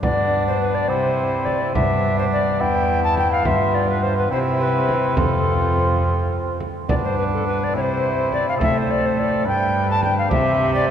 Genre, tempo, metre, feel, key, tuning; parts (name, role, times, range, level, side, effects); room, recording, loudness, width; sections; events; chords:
classical, renaissance-style consort dance; 70 BPM (dotted quarters); 6/8; straight; G mixolydian; A4 = 440 Hz
mellow tenor recorder; melody; 0.0-10.9 s; A4 to A5; -22 LUFS; left 2 dB
mellow cor anglais; second line; 0.0-10.9 s; D4 to B4; -25 LUFS; right 3 dB
mellow bassoon; accompaniment; 0.0-10.9 s; B3 to D4; -25 LUFS; left 2 dB
rich cello; bass; 0.0-10.9 s; E2 to C3; -23 LUFS; equal
frame drum; percussion; 0.0-10.6 s; -28 LUFS; right 1 dB
wet cathedral reverb, RT60 4.8 s; recorded in a church or concert hall; -17 LUFS; side -8 dB against mid
0.0-10.9 A section
0.0 G; 0.9 C; 1.7 G; 2.6 Em; 3.4 G7; 4.3 C; 5.2 F; 6.9 G; 7.7 C; 8.6 Am; 9.5 G; 10.3 C